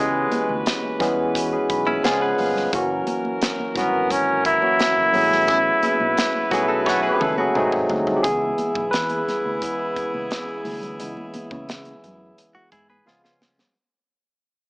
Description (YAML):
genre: lush 1970s-style soul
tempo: 87 BPM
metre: 4/4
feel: straight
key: unclear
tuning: A4 = 439 Hz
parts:
  - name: clear flugelhorn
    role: melody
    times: 0.0-7.5 s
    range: G#3 to E4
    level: -19 LUFS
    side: equal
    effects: none
  - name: barky tine electric piano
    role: accompaniment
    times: 0.0-13.8 s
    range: E3 to B5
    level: -23 LUFS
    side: equal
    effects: overdrive
  - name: muted French horn section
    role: sustained chords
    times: 0.0-13.7 s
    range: B#2 to B4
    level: -31 LUFS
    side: equal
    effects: none
  - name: fingered electric bass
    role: bass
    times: 0.0-13.6 s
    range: F#1 to C#3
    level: -34 LUFS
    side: equal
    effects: none
  - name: modern studio drum kit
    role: drums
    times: 0.3-13.7 s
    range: hi-hat, kick drum, snare drum, toms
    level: -27 LUFS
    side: equal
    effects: none
  - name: congas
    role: percussion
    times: 0.3-13.7 s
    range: none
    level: -35 LUFS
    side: equal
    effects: none
  - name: direct-recorded clean electric guitar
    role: riff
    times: 1.9-7.7, 12.5-13.7 s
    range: C#4 to C#5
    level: -25 LUFS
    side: equal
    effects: none
  - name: warm horn section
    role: stabs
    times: 5.5-13.4 s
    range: C#3 to F#4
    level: -28 LUFS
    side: equal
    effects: none
room: light reverb, small room ambience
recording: small speaker sound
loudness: -18 LUFS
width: side -38 dB against mid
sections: 0.0-8.2 A section; 8.2-13.8 B section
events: tine electric piano fill 1.4-2.7; band accent 5.5-8.2; drum fill 6.9-8.2, 13.1-13.8; fade-out 8.2-13.8; tine electric piano solo 8.2-13.8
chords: 0.0 C#m7; 2.0 C#7; 2.7 F#7; 5.1 Amaj13; 7.5 G#7b9; 8.2 C#m7; 13.1 C#7